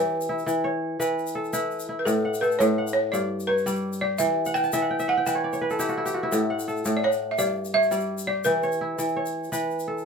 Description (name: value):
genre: west african traditional, West African string and xylophone music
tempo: 113 BPM (dotted quarters)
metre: 12/8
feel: straight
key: unclear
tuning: A4 = 436 Hz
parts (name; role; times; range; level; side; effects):
- balafon; melody; 0.0-8.8 s; A4 to G5; -24 LUFS; equal; none
- kora; arpeggios; 0.0-10.1 s; G2 to A5; -25 LUFS; equal; none
- egg shaker; percussion; 0.2-10.0 s; none; -37 LUFS; left 6 dB; none
room: light reverb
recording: minimal, uncompressed stereo recording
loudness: -23 LUFS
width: side -5 dB against mid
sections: 0.0-10.1 A section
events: kora fill 4.5-6.3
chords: 0.0 Em; 2.1 A; 3.1 G; 4.2 Em; 6.3 A6; 7.4 G5; 8.5 Em